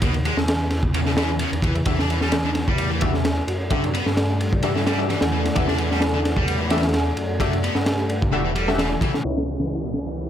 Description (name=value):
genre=breakbeat, breaks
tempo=130 BPM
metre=4/4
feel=straight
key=unclear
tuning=A4 = 439 Hz
part: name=thick fuzz guitar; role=riff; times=0.0-10.3 s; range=B2 to D4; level=-27 LUFS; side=equal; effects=distortion, tube saturation, vintage 12-bit sampler grit, low-pass filter, ping-pong delay
part: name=phased detuned saw bass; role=bass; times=0.0-10.3 s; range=E1 to G2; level=-25 LUFS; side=equal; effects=phaser, tube saturation
part: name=crunchy breakbeat drum kit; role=drums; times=0.0-10.3 s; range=kick drum, ride cymbal, snare drum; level=-23 LUFS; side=equal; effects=low-pass filter on kick, low-pass filter on cymbals, low-pass filter on snare, low-pass filter on room
part: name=dark analog pad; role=sustained chords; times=2.5-10.3 s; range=E3 to F#5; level=-30 LUFS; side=left 1 dB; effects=chorus, sidechain pumping
part: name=orchestra-hit-like synth stab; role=stabs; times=1.9-9.4 s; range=B3 to E5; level=-28 LUFS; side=left 4 dB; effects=built-in reverb, vintage 12-bit sampler grit, ping-pong delay
part: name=downlifter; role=sound effects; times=9.3-10.3 s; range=none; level=-35 LUFS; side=right 3 dB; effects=none
room=light reverb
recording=low-pass filter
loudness=-19 LUFS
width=side -10 dB against mid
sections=0.0-9.2 A section; 9.2-10.3 B section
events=filter sweep 9.2-10.3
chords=0.0 C#madd9 (rootless); 1.6 Em11; 9.2 C#m11